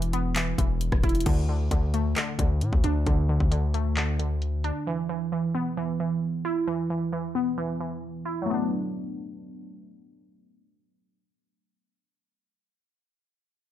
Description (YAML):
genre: hip hop, trap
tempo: 133 BPM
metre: 4/4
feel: half-time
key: D major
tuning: A4 = 444 Hz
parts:
  - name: glassy wavetable pluck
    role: accompaniment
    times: 0.0-12.9 s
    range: D3 to E4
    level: -28 LUFS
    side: right 1 dB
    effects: chorus, low-pass filter
  - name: distorted 808-style bass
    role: bass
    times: 0.0-4.7 s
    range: E1 to A2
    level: -26 LUFS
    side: left 1 dB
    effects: distortion
  - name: trap drum kit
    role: drums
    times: 0.0-4.7 s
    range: crash cymbal, handclaps, hi-hat, kick drum, rim click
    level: -26 LUFS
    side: left 1 dB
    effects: none
room: little or no reverb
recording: low-pass filter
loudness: -24 LUFS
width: side -11 dB against mid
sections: 0.0-1.3 A section; 1.3-8.5 B section; 8.5-12.1 C section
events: filter sweep 1.3-8.5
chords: 0.0 E5; 1.3 D5; 4.9 E5; 8.5 D6